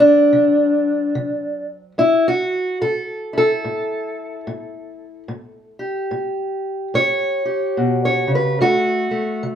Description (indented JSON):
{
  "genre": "acoustic country blues, solo or duo",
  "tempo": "72 BPM",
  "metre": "4/4",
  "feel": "swing 60% on 8ths",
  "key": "unclear",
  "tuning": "A4 = 437 Hz",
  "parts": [
    { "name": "fingerpicked steel-string acoustic guitar", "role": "solo", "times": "0.0-9.6 s", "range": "A2 to C#5", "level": "-16 LUFS", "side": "equal", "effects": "none" }
  ],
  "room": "moderate studio reverb, RT60 0.8 s",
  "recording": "none",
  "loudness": "-17 LUFS",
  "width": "side -9 dB against mid",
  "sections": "0.0-9.6 A section",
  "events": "steel-string acoustic guitar solo 0.0-9.6",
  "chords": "0.0 D7; 2.0 A7; 8.6 D",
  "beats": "0.33 1.15 | 1.98 2.81 3.64 4.46 | 5.29 6.12 6.95 7.77 | 8.60 9.43"
}